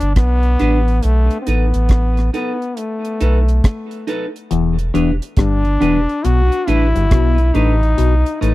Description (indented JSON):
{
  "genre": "roots reggae",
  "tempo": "69 BPM",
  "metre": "4/4",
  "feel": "swing 64% on 16ths",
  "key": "E minor",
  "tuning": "A4 = 440 Hz",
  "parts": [
    { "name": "brilliant trombone", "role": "melody", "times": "0.0-8.5 s", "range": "A3 to F#4", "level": "-21 LUFS", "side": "left 2 dB", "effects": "tape echo" },
    { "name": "warm sub bass", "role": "bass", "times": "0.0-8.5 s", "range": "E1 to B1", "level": "-15 LUFS", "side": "equal", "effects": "none" },
    { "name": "deep reggae drum kit", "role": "drums", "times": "0.0-8.5 s", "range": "hi-hat, kick drum, rim click", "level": "-16 LUFS", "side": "equal", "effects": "none" },
    { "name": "clean electric guitar", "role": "accompaniment", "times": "0.6-8.5 s", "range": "D4 to B4", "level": "-22 LUFS", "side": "right 2 dB", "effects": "tape echo" },
    { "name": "mellow clav", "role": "riff", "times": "4.5-8.5 s", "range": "E2 to B2", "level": "-20 LUFS", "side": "left 6 dB", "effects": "phaser" }
  ],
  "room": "small room ambience",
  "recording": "dry, close 1970s-style studio recording",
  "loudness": "-13 LUFS",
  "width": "side -17 dB against mid",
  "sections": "0.0-8.5 A section",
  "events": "none",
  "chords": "0.0 Em7 (rootless); 1.0 B7; 4.5 Em7; 8.0 B7"
}